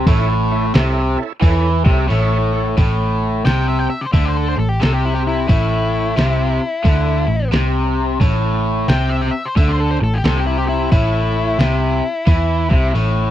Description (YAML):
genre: blues rock power trio and southern rock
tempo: 88 BPM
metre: 4/4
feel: swing 64% on 8ths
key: unclear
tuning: A4 = 440 Hz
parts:
  - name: raw garage guitar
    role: riff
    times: 0.0-13.3 s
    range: A2 to E3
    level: -19 LUFS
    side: left 1 dB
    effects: overdrive
  - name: vintage muted picked electric bass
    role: bass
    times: 0.0-13.3 s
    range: A1 to E2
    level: -18 LUFS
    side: equal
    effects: none
  - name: overdriven tonewheel organ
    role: sustained chords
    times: 0.1-2.7 s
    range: E4 to F#5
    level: -27 LUFS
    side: right 5 dB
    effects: slow rotary speaker, chorus vibrato
  - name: lo-fi sampler-style drum kit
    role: drums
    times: 0.1-13.2 s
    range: hi-hat, kick drum, snare drum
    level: -15 LUFS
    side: equal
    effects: none
  - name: octave-fuzz lead guitar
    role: melody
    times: 3.5-12.9 s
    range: E4 to G5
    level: -22 LUFS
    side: left 3 dB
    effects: distortion
room: little or no reverb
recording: dry, close 1970s-style studio recording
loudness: -14 LUFS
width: side -12 dB against mid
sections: 0.0-2.8 A section; 2.8-13.3 B section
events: break 2.1-2.8, 13.0-13.3; lead electric guitar solo 2.8-13.3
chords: 0.0 A; 2.8 A5